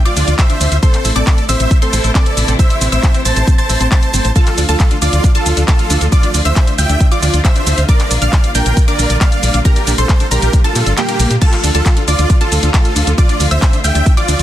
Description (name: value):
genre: uplifting trance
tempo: 136 BPM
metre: 4/4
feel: straight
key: D minor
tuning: A4 = 440 Hz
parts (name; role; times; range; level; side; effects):
- rich studio string section; sustained chords; 0.0-14.4 s; C3 to F4; -24 LUFS; equal; sidechain pumping
- downlifter; sound effects; 0.0-0.8 s; none; barely audible; none; none
- dense compressed supersaw; melody; 0.1-14.4 s; Bb3 to A5; -18 LUFS; right 1 dB; sidechain pumping, tape echo
- wide unison pluck; second line; 0.1-14.4 s; G5 to A6; -24 LUFS; equal; sidechain pumping, tape echo
- analog pluck; arpeggios; 0.1-14.4 s; C4 to F5; -25 LUFS; left 2 dB; chorus, vintage 12-bit sampler grit, sidechain pumping, tape echo
- house drum kit; drums; 0.1-14.4 s; crash cymbal, handclaps, hi-hat, shaker; -20 LUFS; equal; none
- solid FM bass; bass; 0.2-14.4 s; G1 to Bb2; -14 LUFS; equal; sidechain pumping
- electronic kick drum; drums; 0.4-14.2 s; none; -11 LUFS; equal; none
room: little or no reverb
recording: dense, heavily limited modern master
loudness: -10 LUFS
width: side -13 dB against mid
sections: 0.0-14.4 A section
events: kick drops out 11.0-11.4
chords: 0.0 Dm; 0.8 Am; 4.4 Dm; 7.9 Bb6; 11.4 Dm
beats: 0.39 | 0.83 1.27 1.71 2.15 | 2.59 3.03 3.48 3.92 | 4.36 4.80 5.24 5.68 | 6.12 6.56 7.00 7.45 | 7.89 8.33 8.77 9.21 | 9.65 10.09 10.53 10.97 | 11.42 11.86 12.30 12.74 | 13.18 13.62 14.06